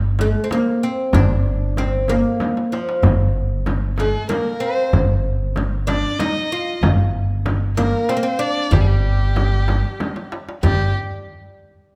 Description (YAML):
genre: Arabic maqam ensemble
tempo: 63 BPM (dotted quarters)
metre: 6/8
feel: straight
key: G maqam bayati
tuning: A4 = 440 Hz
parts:
  - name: upright bass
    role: bass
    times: 0.0-10.9 s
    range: G1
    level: -23 LUFS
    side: equal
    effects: none
  - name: oud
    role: melody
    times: 0.2-10.9 s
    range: F3 to F4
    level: -25 LUFS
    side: equal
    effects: none
  - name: darbuka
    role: percussion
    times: 0.2-10.9 s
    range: none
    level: -24 LUFS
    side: equal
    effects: none
  - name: frame drum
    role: percussion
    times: 0.2-10.9 s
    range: none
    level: -26 LUFS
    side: equal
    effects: none
  - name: dark violin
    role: second line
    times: 4.0-10.9 s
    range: G4 to Eb5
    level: -28 LUFS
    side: equal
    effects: none
room: moderate recital hall reverb, RT60 1.6 s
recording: close, detailed microphones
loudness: -19 LUFS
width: mono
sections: 0.0-10.6 A section; 10.6-12.0 B section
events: drum fill 2.4-3.0, 10.0-10.6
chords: none